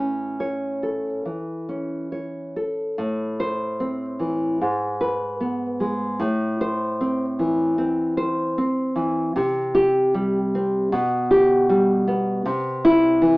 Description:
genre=romantic piece for solo classical guitar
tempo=76 BPM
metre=4/4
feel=uneven beats, rubato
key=A minor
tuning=A4 = 440 Hz
part: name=nylon-string guitar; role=solo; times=0.0-13.4 s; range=G#2 to C#5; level=-20 LUFS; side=equal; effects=none
room=moderate studio reverb, RT60 0.6 s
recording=band playing live in one room, AM radio sound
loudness=-20 LUFS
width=side -23 dB against mid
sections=0.0-3.0 A section; 3.0-13.4 B section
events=none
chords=0.0 A; 3.0 Am; 4.6 G#m; 6.2 Am; 9.4 C5; 10.9 G/B; 12.5 C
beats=0.41 1.27 2.14 | 2.99 3.80 4.61 5.42 | 6.22 7.01 7.80 8.58 | 9.36 10.15 10.93 11.69 | 12.46 13.23

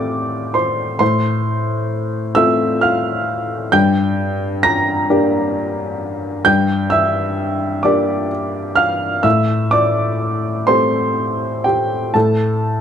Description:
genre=neoclassical minimalist piano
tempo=43 BPM (dotted quarters)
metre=6/8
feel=uneven beats, rubato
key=unclear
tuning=A4 = 440 Hz
part: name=warm upright piano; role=solo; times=0.0-12.8 s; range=G2 to Bb6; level=-15 LUFS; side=equal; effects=none
room=moderate stone room reverb, RT60 1.3 s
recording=none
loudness=-15 LUFS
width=side -8 dB against mid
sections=0.0-12.8 A section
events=none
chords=0.0 Am7; 1.0 F/A; 3.7 Gm; 9.2 Am7; 12.1 N.C.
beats=| 1.00 2.37 | 3.74 5.11 | 6.47 7.85 | 9.24 10.68 | 12.14

